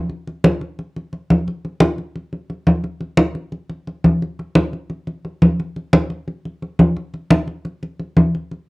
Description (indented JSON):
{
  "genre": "latin",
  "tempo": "174 BPM",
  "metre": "4/4",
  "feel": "straight",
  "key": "none",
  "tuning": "none",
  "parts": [
    { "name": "congas", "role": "percussion", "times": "0.1-8.7 s", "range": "none", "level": "-15 LUFS", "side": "equal", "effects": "none" }
  ],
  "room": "wet studio reverb, RT60 0.5 s",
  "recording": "home recording on cassette",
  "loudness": "-16 LUFS",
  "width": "side -24 dB against mid",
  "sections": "0.0-7.0 A section; 7.0-8.7 B section",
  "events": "none",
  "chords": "none"
}